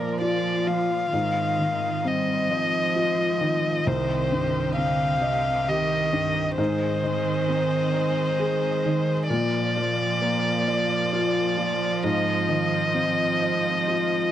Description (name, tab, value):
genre	neoclassical piano and strings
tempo	66 BPM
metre	3/4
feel	rubato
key	unclear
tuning	A4 = 440 Hz
part	muted violin	melody	0.0-14.3 s	Bb4 to F5	-25 LUFS	left 2 dB	none
part	muted cello	second line	0.0-14.3 s	C3 to G3	-28 LUFS	right 6 dB	none
part	felt-muted upright piano	accompaniment	0.0-14.3 s	C2 to Eb5	-27 LUFS	left 2 dB	none
part	muted symphonic string section	sustained chords	0.0-14.3 s	Bb3 to Eb5	-34 LUFS	right 1 dB	none
room	moderate small room reverb, RT60 0.5 s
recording	cassette tape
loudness	-21 LUFS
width	side -11 dB against mid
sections	0.0-14.3 A section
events	none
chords	0.0 Bb; 1.1 Fm7/Ab; 3.9 Cm; 6.6 Ab; 9.3 Bb; 12.0 Fm7/Ab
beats	0.21 | 1.13 2.05 2.96 | 3.87 4.77 5.68 | 6.58 7.49 8.39 | 9.30 10.21 11.13 | 12.04 12.96 13.89